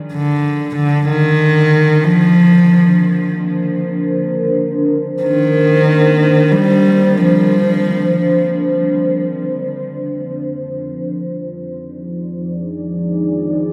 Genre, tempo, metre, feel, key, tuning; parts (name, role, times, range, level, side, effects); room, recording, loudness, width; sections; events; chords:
ambient; free time; A4 = 436 Hz
deep dark ambient pad; sustained chords; 0.0-13.7 s; F3 to Ab5; -20 LUFS; equal; chorus, built-in reverb
warm cello; melody; 0.1-8.4 s; D3 to G3; -16 LUFS; equal; diffuse ambient delay
wet cathedral reverb, RT60 6.2 s; -14 LUFS; mono
0.0-13.7 A section
fade-in on ambient pad 0.0-13.7
0.0 Bb; 9.7 Fm7